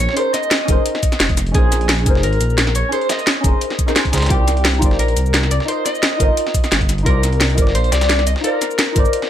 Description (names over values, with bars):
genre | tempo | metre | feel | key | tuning
liquid drum and bass | 174 BPM | 4/4 | swing 54% on 16ths | Bb dorian | A4 = 439 Hz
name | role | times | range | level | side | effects
electric guitar at the edge of break-up | melody | 0.0-9.3 s | G4 to Eb5 | -22 LUFS | left 1 dB | tremolo, ping-pong delay
deep mellow chord stab | accompaniment | 0.0-9.3 s | Db4 to Eb5 | -22 LUFS | equal | chorus, phaser, cassette tape
dark detuned saw bass | bass | 0.0-9.0 s | F1 to Db2 | -18 LUFS | equal | none
dusty soul sampler-style drum kit | drums | 0.1-9.3 s | hi-hat, snare drum | -26 LUFS | equal | high-pass filter on hats, high-pass filter on snare
drum and bass drum kit | drums | 0.2-9.3 s | cabasa, hi-hat, snare drum | -19 LUFS | equal | none
electronic kick drum | drums | 0.7-9.0 s | none | -16 LUFS | equal | none
room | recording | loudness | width
light reverb, digital ambience | none | -14 LUFS | side -10 dB against mid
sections
0.0-9.3 A section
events
none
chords
0.0 Bbm11; 4.3 Cm11